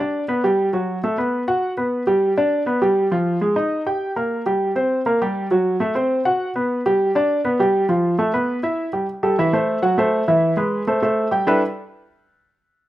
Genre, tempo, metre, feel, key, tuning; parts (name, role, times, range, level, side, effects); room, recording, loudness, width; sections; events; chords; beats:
jazz; 201 BPM; 4/4; straight; G major; A4 = 438 Hz
warm concert grand piano; solo; 0.0-11.6 s; E3 to G5; -17 LUFS; equal; slapback echo
little or no reverb; recorded outdoors, with no room sound; -17 LUFS; side -14 dB against mid
0.0-9.1 A section; 9.1-11.5 B section; 11.5-12.7 C section
0.0 G; 0.7 F#m; 1.3 B5; 1.9 G; 3.1 Fm7; 3.7 Eb; 4.3 C5; 5.5 F#dim; 6.7 G; 7.9 F; 8.5 E5; 9.1 Am7; 9.7 F#dim; 10.3 E; 10.9 Gsus24; 11.5 G69
0.13 0.43 | 0.73 1.03 1.33 1.62 | 1.92 2.22 2.52 2.82 | 3.12 3.42 3.71 4.01 | 4.31 4.61 4.91 5.21 | 5.51 5.81 6.11 6.40 | 6.70 7.00 7.30 7.60 | 7.89 8.19 8.49 8.79 | 9.09 9.38 9.68 9.98 | 10.28 10.57 10.87 11.17 | 11.47